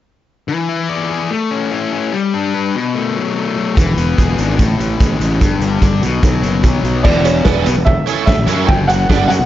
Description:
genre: indie rock.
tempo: 146 BPM.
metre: 4/4.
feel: straight.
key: unclear.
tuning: A4 = 442 Hz.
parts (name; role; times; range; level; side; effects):
fuzz guitar; riff; 0.5-9.5 s; E2 to D5; -17 LUFS; left 5 dB; distortion.
fuzz fingered electric bass; bass; 3.8-9.5 s; E1 to F#2; -17 LUFS; right 1 dB; overdrive.
raw garage drum kit; drums; 3.8-9.4 s; crash cymbal, hi-hat, kick drum, snare drum; -15 LUFS; right 1 dB; none.
warm upright piano; melody; 7.0-9.5 s; B4 to G5; -17 LUFS; right 2 dB; digital delay.
biting overdriven guitar; riff; 7.0-9.3 s; G3 to D5; -21 LUFS; right 8 dB; ensemble chorus.
room: light reverb, small room reverb.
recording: dark, warm production, nothing above 7.7 kHz.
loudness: -13 LUFS.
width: side -12 dB against mid.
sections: 0.5-7.0 A section; 7.0-9.5 B section.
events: none.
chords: 0.5 E7; 1.3 A; 2.1 G; 2.7 B5; 3.8 E7; 4.6 A5; 5.4 G5; 6.0 B5; 7.0 E7; 7.9 A; 8.7 G5.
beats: | 0.49 0.90 1.31 1.72 | 2.13 2.54 2.95 3.36 | 3.77 4.18 4.59 5.00 | 5.41 5.82 6.23 6.64 | 7.05 7.46 7.86 8.27 | 8.68 9.09.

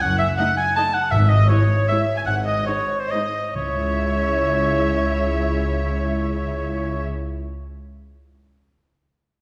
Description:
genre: classical.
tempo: 126-176 BPM.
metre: 3/4.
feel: rubato.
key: C# minor.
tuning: A4 = 440 Hz.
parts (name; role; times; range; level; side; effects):
clear oboe; second line; 0.0-7.0 s; B#4 to A5; -25 LUFS; equal; none.
muted studio violin section; second line; 0.0-7.0 s; B#4 to A5; -32 LUFS; equal; none.
muted studio cello section; bass; 0.0-7.0 s; F#2 to C#3; -32 LUFS; equal; none.
muted studio double bass section; bass; 0.0-7.0 s; F#1 to C#2; -27 LUFS; equal; none.
muted studio violin section; melody; 0.4-7.0 s; B#4 to E5; -35 LUFS; equal; none.
muted studio viola section; accompaniment; 0.4-7.0 s; G#3 to E4; -30 LUFS; equal; none.
timpani; percussion; 1.1-7.7 s; G#2 to C#3; -24 LUFS; equal; none.
room: wet recital hall reverb, RT60 1.8 s.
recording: recorded in a church or concert hall.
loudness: -21 LUFS.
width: mono.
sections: 0.0-3.6 A section; 3.6-6.3 B section.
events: slowing down 0.6-3.6.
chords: 0.0 D#dim/F#; 1.1 C#m/G#; 2.3 G#; 3.6 C#m.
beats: | 0.01 0.38 0.76 | 1.12 1.49 1.88 | 2.26 2.67 3.11 | 3.56 4.00 4.47 | 4.91 5.36 5.83.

